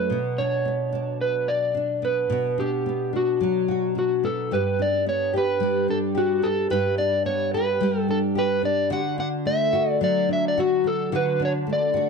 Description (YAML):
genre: acoustic pop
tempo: 109 BPM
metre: 4/4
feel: swing 60% on 16ths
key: unclear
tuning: A4 = 440 Hz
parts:
  - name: electric slide guitar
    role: melody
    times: 0.0-12.1 s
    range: F#4 to F#5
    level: -23 LUFS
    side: left 1 dB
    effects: plate reverb
  - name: nylon-string guitar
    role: accompaniment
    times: 0.0-12.1 s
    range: G2 to G4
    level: -25 LUFS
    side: equal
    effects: double-tracked left and right
room: moderate studio reverb, RT60 0.8 s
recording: dark, warm production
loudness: -21 LUFS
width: side -5 dB against mid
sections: 0.0-4.5 A section; 4.5-12.1 B section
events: none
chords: 0.1 Bm; 4.5 G; 8.9 D